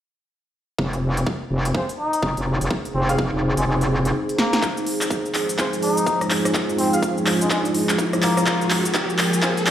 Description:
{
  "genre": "bass house",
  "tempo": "125 BPM",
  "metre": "4/4",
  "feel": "swing 61% on 16ths",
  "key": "F minor",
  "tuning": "A4 = 440 Hz",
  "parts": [
    { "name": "metallic wobble bass", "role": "bass", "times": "0.8-4.1 s", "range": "F1", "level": "-20 LUFS", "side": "equal", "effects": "chorus, tube saturation, sidechain pumping" },
    { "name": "electronic kick drum", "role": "drums", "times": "0.8-9.5 s", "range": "none", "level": "-27 LUFS", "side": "equal", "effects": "high-pass filter on kick, high-pass filter on room" },
    { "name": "deep dark ambient pad", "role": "texture", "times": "2.1-9.7 s", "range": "F3 to C5", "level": "-24 LUFS", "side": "right 1 dB", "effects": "chorus, built-in reverb, sidechain pumping" },
    { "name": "big-room dance drum kit", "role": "drums", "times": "0.9-9.7 s", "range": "cabasa, handclaps, hi-hat, rim click, snare drum", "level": "-23 LUFS", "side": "equal", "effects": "none" },
    { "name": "mellow horn section", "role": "stabs", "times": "1.7-9.5 s", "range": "C4 to F5", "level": "-28 LUFS", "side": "equal", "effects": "sidechain pumping, low-pass filter, tape echo" },
    { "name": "trumpet with cup mute", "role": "melody", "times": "2.0-9.7 s", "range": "Ab3 to Eb4", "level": "-26 LUFS", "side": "left 2 dB", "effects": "tape echo" },
    { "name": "dark analog pad", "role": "sustained chords", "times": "5.4-9.7 s", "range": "Ab3 to C5", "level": "-26 LUFS", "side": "equal", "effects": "chorus, sidechain pumping" },
    { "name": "riser", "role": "sound effects", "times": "6.5-9.7 s", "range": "none", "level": "-29 LUFS", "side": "right 1 dB", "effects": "none" }
  ],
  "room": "light reverb, digital ambience",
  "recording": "played on a big sound system in a bare room, stone room reverb, high-pass filter",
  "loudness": "-19 LUFS",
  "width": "side -10 dB against mid",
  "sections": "0.8-4.6 A section; 4.6-9.7 B section",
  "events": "kick drops out 3.7-4.6; drum fill 4.4, 4.6-9.7; build-up 4.6-9.7; filter sweep on analog synth pad 4.6-9.7; riser 6.5-9.7",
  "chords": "0.8 Fm"
}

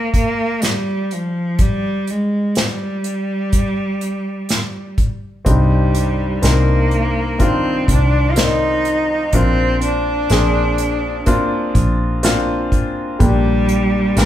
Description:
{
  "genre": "pop ballad",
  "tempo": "62 BPM",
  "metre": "4/4",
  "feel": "straight",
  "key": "unclear",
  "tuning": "A4 = 438 Hz",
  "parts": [
    { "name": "rich cello", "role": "melody", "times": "0.0-14.3 s", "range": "F3 to F4", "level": "-19 LUFS", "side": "right 1 dB", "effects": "none" },
    { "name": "unplugged drum kit", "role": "drums", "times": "0.1-14.3 s", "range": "hi-hat, kick drum, snare drum", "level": "-18 LUFS", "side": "equal", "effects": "none" },
    { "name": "clear concert grand piano", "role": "accompaniment", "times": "5.4-14.3 s", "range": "G2 to D5", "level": "-19 LUFS", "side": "left 2 dB", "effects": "none" },
    { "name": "vintage muted fingered electric bass", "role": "bass", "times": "5.5-14.3 s", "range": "Bb1 to C2", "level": "-18 LUFS", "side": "equal", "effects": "none" }
  ],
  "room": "moderate large studio reverb, RT60 1.3 s",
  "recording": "band playing live in one room",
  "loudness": "-15 LUFS",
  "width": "side -12 dB against mid",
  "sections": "0.0-14.3 A section",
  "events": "none",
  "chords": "0.0 N.C.; 5.5 Cmadd9; 9.3 Bbadd9; 13.2 Gm/Bb"
}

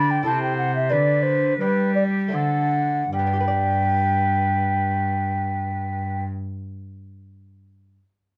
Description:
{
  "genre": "classical, baroque-style sonata movement with continuo",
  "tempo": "75-94 BPM",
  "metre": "3/4",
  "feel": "rubato",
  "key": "G major",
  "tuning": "A4 = 438 Hz",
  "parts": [
    { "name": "clear oboe", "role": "melody", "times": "0.0-6.2 s", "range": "G4 to D5", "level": "-33 LUFS", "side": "equal", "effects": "none" },
    { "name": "baroque flute", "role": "second line", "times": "0.0-6.2 s", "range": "B4 to B5", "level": "-25 LUFS", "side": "equal", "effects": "none" },
    { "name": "lute", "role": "accompaniment", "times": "0.0-6.6 s", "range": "C3 to D5", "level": "-32 LUFS", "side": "equal", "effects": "none" },
    { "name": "rich cello", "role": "bass", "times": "0.0-6.2 s", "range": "G2 to G3", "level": "-27 LUFS", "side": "equal", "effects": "none" }
  ],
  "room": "moderate studio reverb, RT60 0.6 s",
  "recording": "dark, warm production",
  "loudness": "-22 LUFS",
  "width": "mono",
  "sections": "0.0-3.1 A section; 3.1-7.9 B section",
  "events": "slowing down 0.0-3.1",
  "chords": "0.3 Am/C; 0.9 G/D; 2.3 D7; 3.1 G"
}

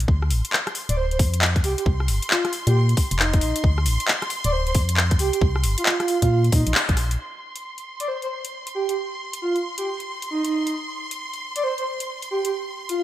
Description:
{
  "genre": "UK garage, two-step garage",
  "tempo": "135 BPM",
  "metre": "4/4",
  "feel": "swing 64% on 16ths",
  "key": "D phrygian",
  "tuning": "A4 = 440 Hz",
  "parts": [
    { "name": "organ-like FM bass", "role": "bass", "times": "0.0-7.2 s", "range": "D1 to Bb2", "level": "-21 LUFS", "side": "equal", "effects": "sidechain pumping" },
    { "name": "garage drum kit", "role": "drums", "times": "0.0-13.0 s", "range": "handclaps, hi-hat, rim click", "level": "-24 LUFS", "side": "left 1 dB", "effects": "studio reverb" },
    { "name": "bright symphonic violin section", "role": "sustained chords", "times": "0.1-13.0 s", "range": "C6", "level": "-32 LUFS", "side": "equal", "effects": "sidechain pumping, low-pass filter" },
    { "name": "electronic kick drum", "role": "drums", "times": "0.1-7.0 s", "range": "none", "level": "-20 LUFS", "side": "equal", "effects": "studio reverb" },
    { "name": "breathy flute-like synth lead", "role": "melody", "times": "0.9-13.0 s", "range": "Eb4 to D5", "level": "-26 LUFS", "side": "right 2 dB", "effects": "tremolo, lush chorus" }
  ],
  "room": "moderate plate reverb, RT60 1.4 s",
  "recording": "bright 1980s-style digital production",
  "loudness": "-20 LUFS",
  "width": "side -13 dB against mid",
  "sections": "0.0-7.2 A section; 7.2-13.0 B section",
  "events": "band accent 6.7",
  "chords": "0.1 Dm7; 1.6 C5; 2.7 Bbsus2; 3.6 Dm7; 5.2 C5; 6.3 Bbsus2; 7.2 N.C."
}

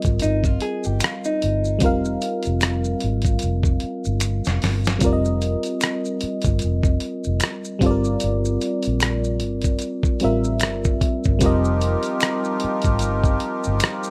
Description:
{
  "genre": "R&B, neo-soul",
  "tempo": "75 BPM",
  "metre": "4/4",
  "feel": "swing 58% on 16ths",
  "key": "unclear",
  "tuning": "A4 = 440 Hz",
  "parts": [
    { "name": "FM electric piano", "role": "accompaniment", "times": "0.0-14.1 s", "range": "G3 to F5", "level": "-26 LUFS", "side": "equal", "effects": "chorus" },
    { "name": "dusty soul sampler-style drum kit", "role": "drums", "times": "0.0-14.0 s", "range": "hi-hat, kick drum, rim click, snare drum", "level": "-24 LUFS", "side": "equal", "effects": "none" },
    { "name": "vintage muted fingered electric bass", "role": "bass", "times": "0.1-13.8 s", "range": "F1 to Bb1", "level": "-25 LUFS", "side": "equal", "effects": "none" },
    { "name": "maracas and finger snaps", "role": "percussion", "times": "0.1-14.1 s", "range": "none", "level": "-34 LUFS", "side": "equal", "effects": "none" },
    { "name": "vintage hollow-body jazz guitar", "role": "second line", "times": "0.2-2.4 s", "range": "Eb4 to Ab4", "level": "-28 LUFS", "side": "equal", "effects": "none" },
    { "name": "accordion", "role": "sustained chords", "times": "11.4-14.1 s", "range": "F3 to Bb4", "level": "-29 LUFS", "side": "equal", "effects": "light tremolo tuning" }
  ],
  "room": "light reverb",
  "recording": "none",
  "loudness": "-21 LUFS",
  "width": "mono",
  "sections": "0.0-5.0 A section; 5.0-14.1 A section",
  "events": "drum fill 4.2-5.0",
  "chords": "0.0 F9sus4; 7.8 Gm11; 11.4 F9sus4"
}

